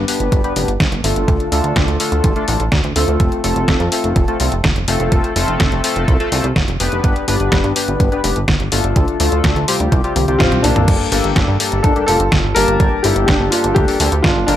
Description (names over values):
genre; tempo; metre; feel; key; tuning
italo disco; 125 BPM; 4/4; straight; F lydian; A4 = 438 Hz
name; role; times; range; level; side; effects
chorused polysynth; stabs; 0.0-14.6 s; G2 to A5; -19 LUFS; left 2 dB; vintage 12-bit sampler grit, ping-pong delay
chorused synth bass; bass; 0.0-14.6 s; F1 to G2; -19 LUFS; right 1 dB; none
detuned 8-bit digital drum machine; drums; 0.1-14.6 s; crash cymbal, hi-hat, snare drum, toms; -19 LUFS; equal; overdrive
electronic kick drum; drums; 0.3-14.3 s; none; -17 LUFS; right 1 dB; overdrive
warm baby grand piano; melody; 10.4-14.6 s; Bb3 to Bb4; -17 LUFS; left 1 dB; ping-pong delay
room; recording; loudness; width
light reverb, digital ambience; none; -13 LUFS; side -11 dB against mid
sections
0.0-10.9 A section; 10.9-14.6 B section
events
drum fill 10.2-10.9; band accent 10.4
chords
0.0 G; 1.3 Dm; 3.2 F; 7.0 G; 9.0 Dm; 9.9 Csus4; 10.9 Gmadd9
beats
0.32 0.80 | 1.28 1.76 2.24 2.72 | 3.20 3.68 4.16 4.64 | 5.12 5.60 6.08 6.56 | 7.04 7.52 8.00 8.48 | 8.96 9.44 9.92 10.40 | 10.88 11.36 11.84 12.32 | 12.80 13.28 13.76 14.24